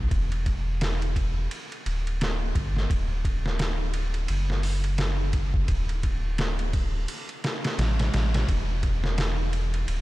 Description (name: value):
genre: trip hop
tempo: 86 BPM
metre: 4/4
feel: swing 59% on 16ths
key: unclear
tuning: A4 = 440 Hz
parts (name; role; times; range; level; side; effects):
- round analog bass; bass; 0.0-10.0 s; D1 to A1; -26 LUFS; equal; none
- trip hop sampler-style drum kit; drums; 0.1-10.0 s; hi-hat, kick drum, ride cymbal, snare drum; -28 LUFS; equal; none
room: little or no reverb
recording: none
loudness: -24 LUFS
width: side -18 dB against mid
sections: 0.0-8.5 A section; 8.5-10.0 B section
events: none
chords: none